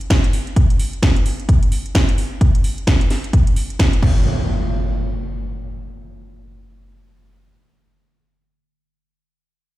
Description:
bass house; 130 BPM; 4/4; swing 60% on 16ths
house drum kit; drums; 0.0-4.1 s; crash cymbal, hi-hat, snare drum; -24 LUFS; right 1 dB; studio reverb
electronic kick drum; drums; 0.1-4.1 s; -15 LUFS; equal; studio reverb
impact; sound effects; 4.0-7.3 s; -21 LUFS; equal
light reverb; played on a big sound system in a bare room, large studio reverb; -15 LUFS; side -16 dB against mid
0.0-4.3 A section; 4.3-7.9 B section
0.10 | 0.56 1.02 1.49 1.95 | 2.41 2.87 3.33 3.79 | 4.26 4.72 5.18 5.64 | 6.10 6.56 7.03

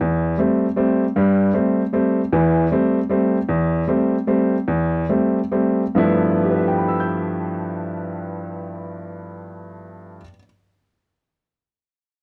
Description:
jazz; 131-155 BPM; 3/4; swing 65% on 8ths; A4 = 440 Hz
clear baby grand piano; solo; 0.0-10.5 s; E2 to G6; -20 LUFS; equal
light reverb; dry, close 1970s-style studio recording; -19 LUFS; mono
0.0-1.2 A section; 1.2-6.0 B section; 6.0-8.7 C section
slowing down 3.5-6.0
0.0 Am7; 6.0 G13
| 0.00 0.39 0.77 | 1.16 1.55 1.94 | 2.32 2.71 3.10 | 3.48 3.87 4.27 | 4.67 5.08 5.51 | 5.96 6.42 6.87 | 7.33 7.79 8.24

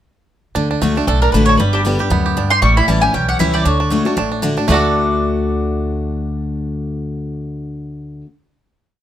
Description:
bluegrass; 232 BPM; 4/4; swing 55% on 8ths; D major; A4 = 440 Hz
picked steel-string acoustic guitar; accompaniment; 0.6-8.3 s; E2 to G4; -18 LUFS; left 3 dB
bluegrass banjo; arpeggios; 0.6-8.2 s; G3 to A4; -21 LUFS; right 6 dB
upright bass; bass; 0.6-8.2 s; G1 to D2; -20 LUFS; equal
mandolin; melody; 1.1-8.2 s; G4 to C#6; -18 LUFS; equal
light reverb; close, detailed microphones; -14 LUFS; side -11 dB against mid
0.6-4.7 A section; 4.7-6.8 final chord
0.6 D; 1.6 G; 2.6 A7; 3.7 D
| 0.56 0.82 1.08 1.33 | 1.59 1.85 2.11 2.37 | 2.63 2.89 3.14 3.40 | 3.66 3.92 4.17 4.43 | 4.69 4.95 5.21 5.46 | 5.72 5.98 6.24 6.50

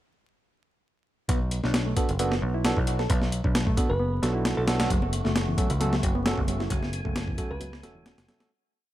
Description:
breakbeat, breaks; 133 BPM; 4/4; swing 54% on 16ths; F# minor; A4 = 439 Hz
reed electric piano; riff; 1.3-8.5 s; E3 to A4; -33 LUFS; equal; phaser, digital delay
picked electric bass; bass; 1.3-8.3 s; E1 to C#2; -28 LUFS; equal
breakbeat sampler-style drum kit; drums; 1.3-8.5 s; hi-hat, kick drum, snare drum; -27 LUFS; equal
overdriven tine electric piano; stabs; 2.0-8.5 s; A3 to A4; -32 LUFS; right 3 dB; digital delay
bell-like FM electric piano; melody; 3.9-4.8, 7.5-7.8 s; A4 to B4; -34 LUFS; equal; chorus, old record sound, cassette tape, digital delay
tonewheel organ; sustained chords; 4.9-8.5 s; C#3 to G#5; -38 LUFS; equal; overdrive, fast rotary speaker, sidechain pumping
congas; percussion; 5.0-8.4 s; -37 LUFS; right 1 dB
little or no reverb; vinyl crackle; -23 LUFS; side -14 dB against mid
1.3-8.5 drop
drop 1.3-8.5; fade-out 6.1-8.5
1.3 Bm7; 4.9 F#m
| 1.29 1.74 2.19 2.64 | 3.10 3.55 4.00 4.45 | 4.90 5.35 5.80 6.25 | 6.71 7.16 7.61 8.06

